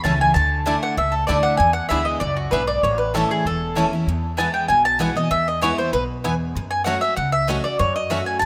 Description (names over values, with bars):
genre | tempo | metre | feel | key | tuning
bluegrass | 194 BPM | 4/4 | straight | A major | A4 = 440 Hz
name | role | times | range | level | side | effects
bluegrass banjo | melody | 0.0-8.2 s | A3 to F#4 | -34 LUFS | equal | none
mandolin | melody | 0.0-8.5 s | F#4 to A5 | -22 LUFS | equal | none
picked steel-string acoustic guitar | accompaniment | 0.0-8.5 s | E2 to F#4 | -28 LUFS | equal | none
mandolin | stabs | 0.0-8.2 s | A3 to B5 | -32 LUFS | equal | none
upright bass | bass | 0.0-8.5 s | E1 to F#2 | -28 LUFS | equal | none
room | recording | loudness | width
moderate plate reverb, RT60 2.8 s | rough home demo mix | -20 LUFS | mono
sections
0.0-4.1 A section; 4.1-8.5 B section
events
none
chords
0.4 Dsus2; 1.6 E7; 2.8 A; 4.1 E; 6.6 F#m